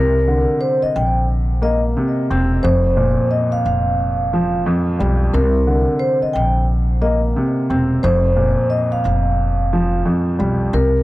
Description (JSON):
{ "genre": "hip hop, boom-bap hip-hop", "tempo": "89 BPM", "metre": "4/4", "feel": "swing 61% on 16ths", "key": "unclear", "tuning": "A4 = 440 Hz", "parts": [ { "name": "vibraphone with soft mallets", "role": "melody", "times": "0.0-11.0 s", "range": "Bb4 to G5", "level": "-20 LUFS", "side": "equal", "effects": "analog delay" }, { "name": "dark baby grand piano", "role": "accompaniment", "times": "0.0-11.0 s", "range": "F2 to C4", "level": "-19 LUFS", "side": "equal", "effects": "none" }, { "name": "upright bass", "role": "bass", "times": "0.0-11.0 s", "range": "E1 to C2", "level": "-18 LUFS", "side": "equal", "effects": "tube saturation" } ], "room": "little or no reverb", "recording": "dry, gritty hardware recording", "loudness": "-15 LUFS", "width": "side -17 dB against mid", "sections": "0.0-11.0 A section", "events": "none", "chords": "0.0 Csus2; 2.6 Fsus24; 5.3 Csus2; 8.0 Fsus24", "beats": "0.61 1.29 1.96 | 2.64 3.31 3.98 4.66 | 5.33 6.01 6.68 7.36 | 8.03 8.70 9.38 10.05 | 10.73" }